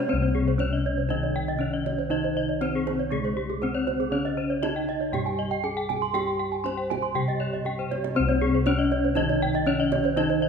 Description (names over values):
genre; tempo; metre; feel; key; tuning
Balinese gamelan; 119 BPM; 4/4; straight; C pelog; A4 = 440 Hz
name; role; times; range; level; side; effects
gamelan-type bronze metallophone; melody; 0.0-10.5 s; Ab3 to C5; -28 LUFS; left 2 dB; none
gamelan-type bronze metallophone; accompaniment; 0.0-10.5 s; C3 to Ab3; -34 LUFS; right 2 dB; none
gamelan-type bronze metallophone; arpeggios; 0.0-10.4 s; Ab4 to C6; -30 LUFS; right 9 dB; none
gamelan-type bossed gongs; bass; 0.0-10.5 s; C2 to G4; -29 LUFS; left 2 dB; none
gamelan-type bronze metallophone; arpeggios; 0.1-10.5 s; G4 to C6; -31 LUFS; left 5 dB; none
kendang; percussion; 0.2-10.5 s; none; -37 LUFS; right 8 dB; none
room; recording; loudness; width
moderate recital hall reverb, RT60 1.6 s; minimal, uncompressed stereo recording; -23 LUFS; side -6 dB against mid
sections
0.1-10.5 A section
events
drum fill 7.5-8.2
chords
none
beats
| 0.09 0.59 1.10 1.60 | 2.11 2.61 3.11 3.62 | 4.12 4.63 5.13 5.63 | 6.14 6.64 7.15 7.65 | 8.16 8.66 9.16 9.67 | 10.17